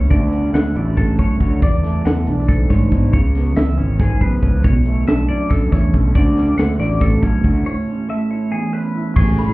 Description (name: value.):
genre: math rock and midwest emo.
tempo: 278 BPM (eighths).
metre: 7/8.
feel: straight.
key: A major.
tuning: A4 = 438 Hz.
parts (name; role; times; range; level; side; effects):
electric guitar through a small old amp; accompaniment; 0.0-9.5 s; E2 to G#4; -21 LUFS; right 3 dB; none.
twelve-string electric guitar; arpeggios; 0.0-9.5 s; G#4 to F#5; -28 LUFS; left 4 dB; phaser, slapback echo.
fuzz fingered electric bass; bass; 0.0-9.5 s; G#1 to A2; -17 LUFS; equal; overdrive.
crisp fusion drum kit; drums; 0.1-9.5 s; crash cymbal, hi-hat, kick drum, snare drum; -18 LUFS; equal; none.
glockenspiel with rubber mallets; melody; 9.2-9.5 s; B5 to C#6; -26 LUFS; left 1 dB; slapback echo.
room: little or no reverb.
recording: heard muffled through a wall, club reverb, EQ.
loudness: -14 LUFS.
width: side -20 dB against mid.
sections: 0.0-9.2 A section.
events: break 7.7-9.2.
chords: 0.1 Dmaj7; 1.6 E9sus4; 3.1 C#m7; 4.6 Bm9; 6.2 Dmaj7; 7.7 Amaj9.